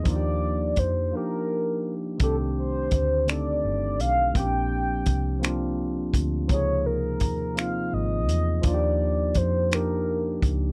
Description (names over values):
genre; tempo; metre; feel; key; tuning
slow six-eight R&B; 56 BPM (dotted quarters); 6/8; straight; unclear; A4 = 440 Hz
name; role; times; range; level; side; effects
mellow horn-like synth lead; melody; 0.0-10.5 s; A4 to G5; -30 LUFS; equal; chorus, phaser, slapback echo
barky tine electric piano; accompaniment; 0.0-10.7 s; C3 to A4; -31 LUFS; equal; overdrive
vintage muted fingered electric bass; bass; 0.0-10.7 s; G1 to F2; -30 LUFS; equal; none
warm soul drum kit; drums; 0.1-10.6 s; finger snaps, hi-hat, kick drum; -28 LUFS; equal; none
room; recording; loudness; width
little or no reverb; none; -25 LUFS; mono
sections
0.0-10.7 A section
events
break 1.1-2.2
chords
0.1 Ebmaj9; 2.2 Cm69; 4.3 Bb69; 6.5 Dbmaj13; 8.6 Ebmaj9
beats
| 0.06 1.13 | 2.21 3.28 | 4.35 5.42 | 6.49 7.56 | 8.63 9.71